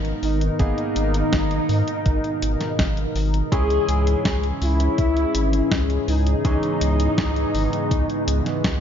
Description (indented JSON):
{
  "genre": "synthwave",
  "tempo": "82 BPM",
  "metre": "4/4",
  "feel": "straight",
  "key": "unclear",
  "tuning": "A4 = 438 Hz",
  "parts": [
    { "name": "expressive portamento lead", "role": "melody", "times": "0.0-8.8 s", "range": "D#4 to G#4", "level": "-25 LUFS", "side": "left 1 dB", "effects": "ensemble chorus, ping-pong delay" },
    { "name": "warm analog pad", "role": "sustained chords", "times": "0.0-8.8 s", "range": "G#2 to A#4", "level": "-26 LUFS", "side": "left 1 dB", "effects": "chorus, phaser, sidechain pumping" },
    { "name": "bright baby grand piano", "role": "stabs", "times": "0.0-8.8 s", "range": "E3 to G#4", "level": "-31 LUFS", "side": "right 1 dB", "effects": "none" },
    { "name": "round analog bass", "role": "bass", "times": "0.0-8.8 s", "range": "G#1 to G#2", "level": "-22 LUFS", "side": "equal", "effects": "sidechain pumping" },
    { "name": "clean 12-bit digital drum machine", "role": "drums", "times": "0.0-8.8 s", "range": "hi-hat, snare drum", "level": "-28 LUFS", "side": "equal", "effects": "small room reverb" },
    { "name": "electronic kick drum", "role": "drums", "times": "0.6-8.8 s", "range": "none", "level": "-23 LUFS", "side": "equal", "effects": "small room reverb" }
  ],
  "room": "light reverb, digital ambience",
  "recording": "dark, warm production, nothing above 7.4 kHz",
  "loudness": "-19 LUFS",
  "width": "side -8 dB against mid",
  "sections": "0.0-8.8 A section",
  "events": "none",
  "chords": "0.0 G#madd9; 3.5 C#m"
}